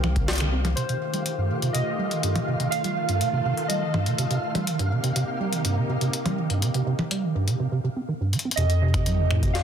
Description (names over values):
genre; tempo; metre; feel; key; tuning
IDM; 123 BPM; 4/4; straight; unclear; A4 = 440 Hz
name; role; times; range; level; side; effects
warbly lo-fi synth keys; melody; 0.0-4.4, 8.6-9.6 s; C5 to F5; -30 LUFS; right 2 dB; chorus, dub echo
soft string machine; sustained chords; 0.0-9.6 s; C3 to A4; -31 LUFS; left 1 dB; ensemble chorus
deep acid bass; arpeggios; 0.0-9.5 s; C2 to C4; -26 LUFS; right 2 dB; none
round analog bass; bass; 0.0-0.7, 8.6-9.6 s; C2 to F2; -23 LUFS; left 1 dB; none
jungle sampler-style drum kit; drums; 0.0-9.6 s; finger snaps, hi-hat, snare drum, toms; -29 LUFS; left 1 dB; soft clipping on snare
flickering grainy texture; texture; 0.0-7.6 s; F5; -35 LUFS; right 2 dB; built-in reverb
electronic kick drum; drums; 0.2-0.3, 8.9-9.5 s; none; -27 LUFS; equal; overdrive
room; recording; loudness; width
moderate plate reverb, RT60 1.2 s; dense, heavily limited modern master; -22 LUFS; side -8 dB against mid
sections
0.8-8.6 A section; 8.6-9.6 B section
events
kick drops out 0.3-0.8; band accent 0.3; filter sweep on acid bass 0.8-8.6; drum fill 8.3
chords
0.0 Cm7; 0.8 F9; 4.7 Cm7; 8.6 F9